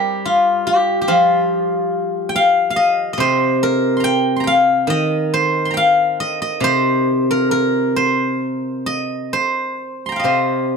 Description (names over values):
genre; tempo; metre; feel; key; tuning
chinese traditional, Chinese solo plucked strings; 62-72 BPM; 4/4; rubato; C yu mode; A4 = 440 Hz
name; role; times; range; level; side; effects
steel-string zither; solo; 0.0-10.8 s; C3 to C6; -15 LUFS; left 1 dB; none
room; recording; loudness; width
light reverb; dark, warm production; -15 LUFS; side -5 dB against mid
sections
0.0-10.3 A section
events
none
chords
none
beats
0.69 1.53 2.37 | 3.21 4.05 4.91 5.77 | 6.64 7.51 8.40 9.33 | 10.25